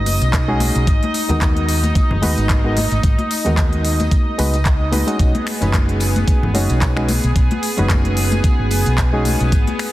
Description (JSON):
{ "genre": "nu-disco, nu disco", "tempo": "111 BPM", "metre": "4/4", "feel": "swing 56% on 16ths", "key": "B major", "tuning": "A4 = 442 Hz", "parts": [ { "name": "reed electric piano", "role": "accompaniment", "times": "0.0-9.5 s", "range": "G#3 to C#5", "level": "-23 LUFS", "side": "equal", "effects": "sidechain pumping, analog delay" }, { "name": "lush unison pad", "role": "sustained chords", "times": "0.0-9.9 s", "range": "B3 to D#5", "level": "-24 LUFS", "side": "equal", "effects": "chorus, vintage 12-bit sampler grit, sidechain pumping" }, { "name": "hollow-body short-scale fingered electric bass", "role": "bass", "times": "0.0-9.6 s", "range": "F#1 to D#2", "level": "-18 LUFS", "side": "equal", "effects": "tube saturation" }, { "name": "pop drum kit", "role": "drums", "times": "0.1-9.9 s", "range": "finger snaps, handclaps, hi-hat", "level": "-25 LUFS", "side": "equal", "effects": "small room ambience" }, { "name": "tambourine and congas", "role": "percussion", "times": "0.1-9.9 s", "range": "none", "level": "-26 LUFS", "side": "left 2 dB", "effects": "none" }, { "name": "electronic kick drum", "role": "drums", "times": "0.3-9.6 s", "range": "none", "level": "-16 LUFS", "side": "equal", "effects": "small room ambience" } ], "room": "light reverb", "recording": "dense, heavily limited modern master", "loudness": "-14 LUFS", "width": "side -16 dB against mid", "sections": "0.0-9.9 A section", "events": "none", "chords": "0.0 B6; 0.9 G#m7; 5.2 B6", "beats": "0.33 | 0.87 1.41 1.96 2.50 | 3.04 3.58 4.12 4.66 | 5.20 5.74 6.28 6.82 | 7.36 7.90 8.44 8.98 | 9.52" }